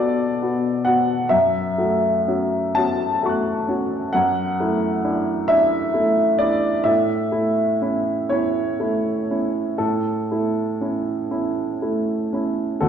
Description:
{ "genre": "neoclassical minimalist piano", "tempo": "39-45 BPM (dotted quarters)", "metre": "6/8", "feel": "rubato", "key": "unclear", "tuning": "A4 = 441 Hz", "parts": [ { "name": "warm upright piano", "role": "solo", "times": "0.0-12.9 s", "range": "D2 to F#6", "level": "-18 LUFS", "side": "equal", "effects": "none" } ], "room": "wet recital hall reverb, RT60 1.4 s", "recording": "recorded in a church or concert hall", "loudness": "-18 LUFS", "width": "side -8 dB against mid", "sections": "0.0-12.8 A section", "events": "none", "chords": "0.0 Bm; 1.3 F#m7; 4.1 Dadd9/F#; 6.9 A", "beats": "| 1.32 2.77 | 4.14 5.50 | 6.87 8.31 | 9.79 11.31 | 12.82" }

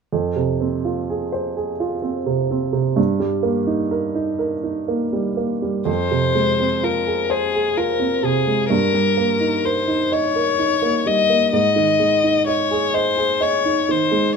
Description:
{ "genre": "neoclassical piano and strings", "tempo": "42 BPM (dotted quarters)", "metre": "6/8", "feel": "rubato", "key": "F minor", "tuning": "A4 = 442 Hz", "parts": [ { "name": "dark upright piano", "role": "accompaniment", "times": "0.1-14.4 s", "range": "F2 to Eb5", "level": "-19 LUFS", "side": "right 4 dB", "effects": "none" }, { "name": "warm violin", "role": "melody", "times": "5.9-14.4 s", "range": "Ab4 to Eb5", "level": "-19 LUFS", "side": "left 6 dB", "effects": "none" } ], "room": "light reverb", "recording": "minimal, uncompressed stereo recording", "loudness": "-17 LUFS", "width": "side -5 dB against mid", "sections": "0.1-5.9 A section; 5.9-14.4 B section", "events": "none", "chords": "0.1 Fm; 3.0 Eb/G; 5.9 Fm; 8.7 Eb/G; 11.5 Ab5", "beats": "| 0.13 1.56 | 2.98 4.40 | 5.88 7.30 | 8.72 10.13 | 11.54 12.95 | 14.36" }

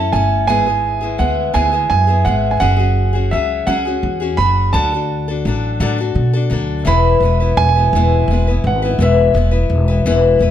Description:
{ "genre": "folk rock and heartland rock", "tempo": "56 BPM (dotted quarters)", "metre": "6/8", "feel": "straight", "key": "unclear", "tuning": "A4 = 440 Hz", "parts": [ { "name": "warm concert grand piano", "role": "melody", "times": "0.0-10.4 s", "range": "E5 to B5", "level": "-18 LUFS", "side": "right 5 dB", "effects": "slapback echo, plate reverb" }, { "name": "picked old ladder-braced acoustic guitar", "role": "accompaniment", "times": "0.0-10.5 s", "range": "G#2 to B4", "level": "-18 LUFS", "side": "left 6 dB", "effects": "none" }, { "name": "upright bass", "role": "bass", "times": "0.0-10.5 s", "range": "E1 to B2", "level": "-16 LUFS", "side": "equal", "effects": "none" } ], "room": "light reverb", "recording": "dark, warm production", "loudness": "-13 LUFS", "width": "side -10 dB against mid", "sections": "0.0-6.9 A section; 6.9-10.5 B section", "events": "none", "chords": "0.5 E/G#; 2.6 F#sus2; 4.7 D; 6.9 E", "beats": "| 0.49 1.55 | 2.62 3.68 | 4.74 5.80 | 6.87 7.93 | 8.99 10.05" }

